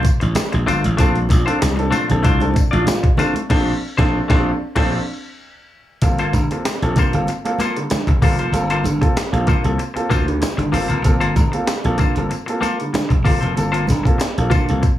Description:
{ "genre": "funk", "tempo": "95 BPM", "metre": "4/4", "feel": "straight", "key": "G minor", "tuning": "A4 = 444 Hz", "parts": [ { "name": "semi-hollow electric guitar", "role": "accompaniment", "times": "0.0-14.9 s", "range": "A3 to D5", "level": "-23 LUFS", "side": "left 4 dB", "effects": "none" }, { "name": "slap bass", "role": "bass", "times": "0.0-14.8 s", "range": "F1 to D2", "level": "-20 LUFS", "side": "equal", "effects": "none" }, { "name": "breakbeat sampler-style drum kit", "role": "drums", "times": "0.0-15.0 s", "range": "crash cymbal, hi-hat, kick drum, snare drum", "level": "-19 LUFS", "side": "equal", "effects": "none" }, { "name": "congas", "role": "percussion", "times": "0.0-15.0 s", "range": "none", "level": "-27 LUFS", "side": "right 3 dB", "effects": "none" }, { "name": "tambourine", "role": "percussion", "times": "0.1-15.0 s", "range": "none", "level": "-37 LUFS", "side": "left 4 dB", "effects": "none" }, { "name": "warm upright piano", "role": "stabs", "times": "1.0-14.8 s", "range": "G2 to A4", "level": "-22 LUFS", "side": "right 2 dB", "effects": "none" } ], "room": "little or no reverb", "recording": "small room ambience", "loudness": "-15 LUFS", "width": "side -13 dB against mid", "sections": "0.0-6.0 A section; 6.0-15.0 B section", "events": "break 0.0-1.0, 4.8-6.0; band accent 3.5-6.0", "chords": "0.0 Bbmaj9; 6.0 Gm11" }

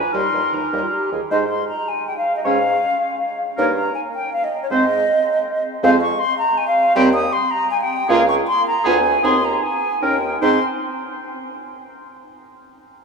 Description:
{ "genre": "quick classical-period movement for wind quintet", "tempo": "158 BPM", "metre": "3/4", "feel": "straight", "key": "Ab major", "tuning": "A4 = 438 Hz", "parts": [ { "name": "hollow concert flute", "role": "melody", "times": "0.0-10.6 s", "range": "Db5 to Eb6", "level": "-19 LUFS", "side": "left 1 dB", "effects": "none" }, { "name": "warm oboe", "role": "second line", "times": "0.0-10.6 s", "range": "Ab4 to Db5", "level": "-26 LUFS", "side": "equal", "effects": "none" }, { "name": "clear French horn", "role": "accompaniment", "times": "0.0-10.6 s", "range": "Eb3 to Db4", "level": "-27 LUFS", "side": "equal", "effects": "none" }, { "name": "mellow clarinet", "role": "accompaniment", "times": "0.0-10.6 s", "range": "C4 to Ab4", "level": "-25 LUFS", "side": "right 4 dB", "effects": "none" }, { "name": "warm bassoon", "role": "bass", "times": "0.0-10.6 s", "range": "Db2 to Ab2", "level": "-22 LUFS", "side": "right 3 dB", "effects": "none" } ], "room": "wet cathedral reverb, RT60 5.7 s", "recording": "in a vast, echoing space", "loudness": "-16 LUFS", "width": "side -5 dB against mid", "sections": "0.0-1.3 A section; 1.3-10.4 B section; 10.4-11.6 C section", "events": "none", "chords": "0.1 Eb; 1.3 Ab; 2.5 Db/Ab (rootless); 3.6 Eb/G; 4.7 Ab5; 5.8 Fm; 7.0 Cm/Eb; 8.1 Bbm/Db; 8.9 Ddim7; 9.2 Ab/Eb; 10.0 Eb7; 10.4 Ab" }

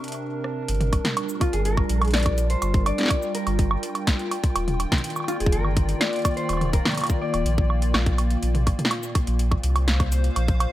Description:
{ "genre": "IDM", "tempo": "124 BPM", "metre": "4/4", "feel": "straight", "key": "G minor", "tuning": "A4 = 441 Hz", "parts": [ { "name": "hollow soft pad", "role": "sustained chords", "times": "0.0-10.7 s", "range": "Bb2 to G5", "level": "-29 LUFS", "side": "equal", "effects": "chorus, vintage 12-bit sampler grit" }, { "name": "electro analog drum machine", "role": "drums", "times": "0.0-10.7 s", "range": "cabasa, hi-hat, rim click, snare drum, toms, woodblock", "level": "-26 LUFS", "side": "right 1 dB", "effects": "small room ambience" }, { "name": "warm sub bass", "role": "bass", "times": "0.7-10.7 s", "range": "Eb1 to C2", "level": "-23 LUFS", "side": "equal", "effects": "none" }, { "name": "electronic kick drum", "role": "drums", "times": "0.9-10.6 s", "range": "none", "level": "-22 LUFS", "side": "equal", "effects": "small room ambience" }, { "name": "mellow electric guitar", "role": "melody", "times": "1.4-7.7 s", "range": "F4 to D5", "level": "-29 LUFS", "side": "left 2 dB", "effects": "tape echo" } ], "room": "light reverb", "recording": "none", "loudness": "-20 LUFS", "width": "side -14 dB against mid", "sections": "0.7-10.7 A section", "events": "drum fill 0.4", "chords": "0.0 C7; 0.7 Gm7; 4.6 Ebmaj7; 8.4 Bbsus2" }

